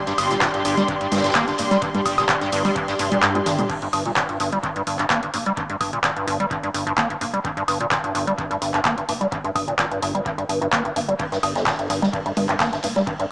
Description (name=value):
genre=acid house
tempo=128 BPM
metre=4/4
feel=straight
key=G minor pentatonic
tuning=A4 = 440 Hz
part: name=warm analog pad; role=sustained chords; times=0.0-3.7 s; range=G3 to G4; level=-27 LUFS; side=equal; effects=chorus, tremolo, sidechain pumping
part: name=dark studio string section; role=texture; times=0.0-3.7 s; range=G4 to C6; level=-25 LUFS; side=equal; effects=sidechain pumping
part: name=liquid acid bass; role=riff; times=0.1-13.3 s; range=G1 to Bb3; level=-23 LUFS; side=equal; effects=chorus, overdrive, sidechain pumping, tape echo
part: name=booming analog drum machine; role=drums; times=0.1-13.3 s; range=congas, crash cymbal, handclaps, hi-hat, shaker, toms, woodblock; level=-22 LUFS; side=equal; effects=dub echo
part: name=swinging big-band drum kit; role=drums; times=0.1-3.6, 11.2-13.2 s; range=ride cymbal, snare drum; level=-34 LUFS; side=equal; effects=sidechain pumping on cymbals, high-pass filter on cymbals, high-pass filter on snare, high-pass filter on room
part: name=saturated sub bass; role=bass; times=0.2-13.0 s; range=F1 to G2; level=-34 LUFS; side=equal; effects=sidechain pumping
part: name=electronic kick drum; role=drums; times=0.4-13.2 s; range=none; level=-33 LUFS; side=equal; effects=none
room=moderate spring reverb, RT60 2.5 s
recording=echo-heavy mix, small speaker sound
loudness=-19 LUFS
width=side -24 dB against mid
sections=0.0-3.7 A section; 3.7-13.3 B section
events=drop 0.0-3.7; kick drops out 3.2-3.7; drum fill 3.2-3.7; filter sweep on acid bass 3.7-13.3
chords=0.0 Gm; 3.7 N.C.